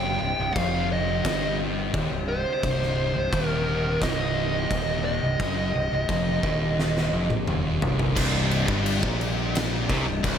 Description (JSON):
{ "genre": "stoner and doom metal", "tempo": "87 BPM", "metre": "4/4", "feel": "straight", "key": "C minor", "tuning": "A4 = 441 Hz", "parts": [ { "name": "fuzz lead guitar", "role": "melody", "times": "0.0-7.4 s", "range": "C5 to G5", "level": "-28 LUFS", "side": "right 1 dB", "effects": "wah, distortion, tape echo" }, { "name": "percussive tonewheel organ", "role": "sustained chords", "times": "0.0-10.4 s", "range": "C3 to G4", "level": "-37 LUFS", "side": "left 1 dB", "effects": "slow rotary speaker, overdrive, chorus vibrato" }, { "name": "thick fuzz guitar", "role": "riff", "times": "0.0-10.4 s", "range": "C2 to C3", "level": "-30 LUFS", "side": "left 8 dB", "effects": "distortion" }, { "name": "thick fuzz guitar", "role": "riff", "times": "0.0-10.4 s", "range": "C2 to C3", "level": "-30 LUFS", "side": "right 7 dB", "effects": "distortion" }, { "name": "modern bright fingered electric bass", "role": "bass", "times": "0.0-10.4 s", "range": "C1 to C2", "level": "-30 LUFS", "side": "equal", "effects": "overdrive" }, { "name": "oversized low-tuned drum kit", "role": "drums", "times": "0.6-10.4 s", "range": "crash cymbal, kick drum, snare drum, toms", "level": "-28 LUFS", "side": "left 1 dB", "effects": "none" }, { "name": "heavy high-gain guitar", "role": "riff", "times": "8.2-10.4 s", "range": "C2 to C3", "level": "-30 LUFS", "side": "equal", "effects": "distortion" } ], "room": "light reverb, small room ambience", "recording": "none", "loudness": "-22 LUFS", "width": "side -8 dB against mid", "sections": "0.0-8.2 A section; 8.2-10.4 B section", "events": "drum fill 6.8-8.2", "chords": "0.0 Cm; 8.2 C5" }